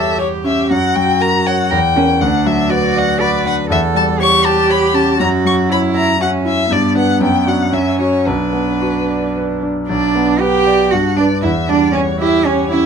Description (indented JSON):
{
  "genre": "quick classical-period movement for piano trio",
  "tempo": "118 BPM",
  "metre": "3/4",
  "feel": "rubato",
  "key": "B minor",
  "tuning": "A4 = 441 Hz",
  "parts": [
    { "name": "warm violin", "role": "melody", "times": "0.0-12.9 s", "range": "B4 to C#6", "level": "-17 LUFS", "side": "left 4 dB", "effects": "none" },
    { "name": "warm cello", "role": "second line", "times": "0.0-12.9 s", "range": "B3 to B4", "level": "-17 LUFS", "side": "right 6 dB", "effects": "none" },
    { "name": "bright concert grand piano", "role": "accompaniment", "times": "0.0-12.9 s", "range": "B1 to E5", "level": "-16 LUFS", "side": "left 1 dB", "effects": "none" }
  ],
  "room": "light reverb",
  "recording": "close, detailed microphones",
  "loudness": "-12 LUFS",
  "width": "side -6 dB against mid",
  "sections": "0.0-9.9 A section; 9.9-12.9 A section",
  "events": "none",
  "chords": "0.0 C#dim/E; 0.7 F#; 1.7 Edim7; 2.2 Bm/D; 3.7 C#dim/E; 5.2 F#5; 6.7 G; 7.2 Bm/F#; 7.7 F#5; 8.3 Bm; 10.9 G; 11.4 C#dim/E"
}